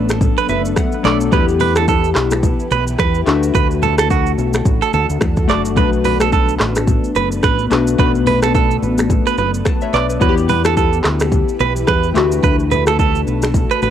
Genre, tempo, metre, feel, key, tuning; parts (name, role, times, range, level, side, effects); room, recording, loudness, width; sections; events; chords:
afrobeats; 108 BPM; 4/4; swing 58% on 16ths; B minor; A4 = 440 Hz
glassy digital keys; accompaniment; 0.0-13.9 s; F#3 to A5; -20 LUFS; left 8 dB; chorus, cassette tape
granular cloud pad; sustained chords; 0.0-13.9 s; D3 to B4; -25 LUFS; equal; built-in reverb, cassette tape
fingered electric bass; bass; 0.0-13.9 s; F#1 to E2; -20 LUFS; equal
afro-pop drum kit; drums; 0.1-13.9 s; finger snaps, handclaps, hi-hat, kick drum, rim click, shaker; -18 LUFS; equal; cassette tape
bongos and congas; percussion; 0.1-13.9 s; -26 LUFS; left 8 dB
direct-recorded clean electric guitar; riff; 0.4-13.9 s; F#4 to D5; -19 LUFS; right 11 dB; spring reverb, cassette tape, analog delay
light reverb; home recording on cassette; -13 LUFS; side -10 dB against mid
0.0-13.9 A section
synth keys fill 0.2-1.3, 9.4-10.2
0.0 Bm7; 1.3 Em; 3.3 D; 5.8 Bm7; 10.2 Em; 12.2 D